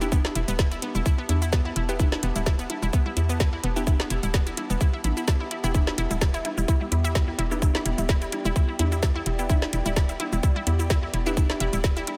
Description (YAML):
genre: minimal techno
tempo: 128 BPM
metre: 4/4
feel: swing 54% on 16ths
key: E minor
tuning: A4 = 440 Hz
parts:
  - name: resonant blip pluck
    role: riff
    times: 0.0-12.1 s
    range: B3 to E4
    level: -33 LUFS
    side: equal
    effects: chorus, sidechain pumping, tape echo
  - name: wavetable chord stab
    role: stabs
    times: 0.0-11.3 s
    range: B3 to G4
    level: -39 LUFS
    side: equal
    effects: none
  - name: hollow knocking FM bass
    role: bass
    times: 0.0-12.0 s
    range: D1 to E2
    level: -30 LUFS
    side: equal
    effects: sidechain pumping
  - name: garage drum kit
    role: drums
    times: 0.0-12.2 s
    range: hi-hat, shaker, snare drum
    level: -34 LUFS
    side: equal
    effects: none
  - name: congas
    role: percussion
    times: 0.0-12.2 s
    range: none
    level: -37 LUFS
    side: equal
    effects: tape echo
  - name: warbly tape-like pad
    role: texture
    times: 0.0-12.2 s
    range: B3 to A5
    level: -38 LUFS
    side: equal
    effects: chorus, built-in reverb, phaser, sidechain pumping
  - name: electronic kick drum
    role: drums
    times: 0.1-11.9 s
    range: none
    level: -24 LUFS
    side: equal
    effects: none
room: light reverb, digital ambience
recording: none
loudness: -25 LUFS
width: mono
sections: 0.0-12.2 A section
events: none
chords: 0.0 Em